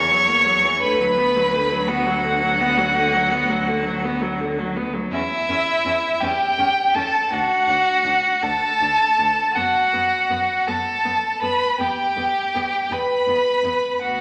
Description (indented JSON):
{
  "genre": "classical, slow romantic movement for string quartet",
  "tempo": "55 BPM (dotted quarters)",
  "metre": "12/8",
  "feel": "rubato",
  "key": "B minor",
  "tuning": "A4 = 440 Hz",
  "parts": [
    { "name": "rich violin", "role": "melody", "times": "0.0-14.2 s", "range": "E5 to C#6", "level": "-23 LUFS", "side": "equal", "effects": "none" },
    { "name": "rich violin", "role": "second line", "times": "0.0-14.2 s", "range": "E4 to C#5", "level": "-24 LUFS", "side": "equal", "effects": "none" },
    { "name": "rich viola", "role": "accompaniment", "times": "0.0-14.2 s", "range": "D3 to D4", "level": "-31 LUFS", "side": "equal", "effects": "none" },
    { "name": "rich cello", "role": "bass", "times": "0.0-14.2 s", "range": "D2 to F#2", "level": "-33 LUFS", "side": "equal", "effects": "none" }
  ],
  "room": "wet recital hall reverb, RT60 1.5 s",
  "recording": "none",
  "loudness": "-20 LUFS",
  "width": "mono",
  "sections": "0.0-14.2 A section",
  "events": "none",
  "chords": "0.0 F#7/E; 0.8 Bm/D; 5.1 Em6; 7.3 D; 9.6 B5/F#; 11.8 Em",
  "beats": "| 0.82 1.89 2.95 4.03 | 5.12 6.22 7.32 8.43 | 9.56 10.67 11.79 12.92 | 14.01"
}